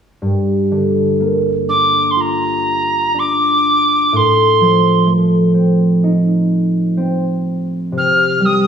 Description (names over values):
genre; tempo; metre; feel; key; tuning
celtic folk, Celtic slow air; 63 BPM; 4/4; rubato; G minor; A4 = 440 Hz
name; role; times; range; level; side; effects
concert harp; accompaniment; 0.2-8.7 s; G2 to F4; -14 LUFS; equal; none
mellow tin whistle; melody; 1.7-8.7 s; Bb5 to F6; -13 LUFS; right 2 dB; none
room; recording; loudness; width
moderate recital hall reverb, RT60 1.6 s; studio reverb, faint mains hum; -12 LUFS; side -7 dB against mid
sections
0.2-8.7 A section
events
none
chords
0.2 Gm7; 4.1 F7/A; 7.9 Cm